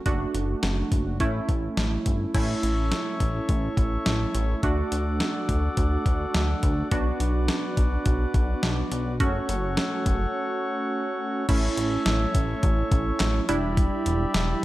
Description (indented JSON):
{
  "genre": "synth-pop",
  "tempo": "105 BPM",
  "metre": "4/4",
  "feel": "straight",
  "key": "unclear",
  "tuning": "A4 = 440 Hz",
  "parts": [
    { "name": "funky polysynth comp", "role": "accompaniment", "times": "0.1-14.6 s", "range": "G3 to F#4", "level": "-28 LUFS", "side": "right 2 dB", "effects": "chorus" },
    { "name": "chorused synth bass", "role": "bass", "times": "0.1-14.5 s", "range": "E1 to D2", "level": "-26 LUFS", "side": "equal", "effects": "none" },
    { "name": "clean 12-bit digital drum machine", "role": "drums", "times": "0.1-14.5 s", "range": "crash cymbal, handclaps, hi-hat, kick drum, snare drum", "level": "-26 LUFS", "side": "equal", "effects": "none" },
    { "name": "mellow accordion", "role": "sustained chords", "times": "2.3-14.6 s", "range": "G4 to D6", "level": "-31 LUFS", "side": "left 2 dB", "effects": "none" }
  ],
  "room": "light reverb, digital ambience",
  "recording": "none",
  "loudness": "-22 LUFS",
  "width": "side -16 dB against mid",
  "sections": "0.0-2.3 A section; 2.3-11.5 B section; 11.5-14.6 C section",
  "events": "break 10.3-11.5",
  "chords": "0.1 D/F#; 1.2 A; 4.6 D; 6.9 Bm; 9.2 F#m; 11.5 A; 13.5 Em7"
}